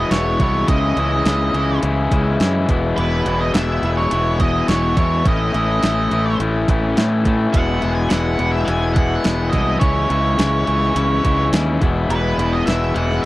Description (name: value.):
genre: indie rock.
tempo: 105 BPM.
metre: 4/4.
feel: straight.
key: E major.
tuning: A4 = 440 Hz.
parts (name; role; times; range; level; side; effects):
octave-fuzz lead guitar; melody; 0.0-13.3 s; B4 to G#5; -23 LUFS; right 2 dB; distortion, tape echo.
crunchy overdriven guitar; riff; 0.0-13.3 s; E2 to E4; -19 LUFS; left 3 dB; none.
growling fingered electric bass; bass; 0.0-13.2 s; E1 to A2; -21 LUFS; right 1 dB; overdrive.
crisp 8-bit digital drum machine; drums; 0.1-13.2 s; hi-hat, kick drum, snare drum; -19 LUFS; right 1 dB; overdrive.
room: little or no reverb.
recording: dry, close 1970s-style studio recording.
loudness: -15 LUFS.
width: side -17 dB against mid.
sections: 0.0-13.3 A section.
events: none.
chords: 0.0 E; 0.7 C#madd9; 2.7 E; 5.3 A; 7.5 E; 9.8 C#madd9; 11.8 E.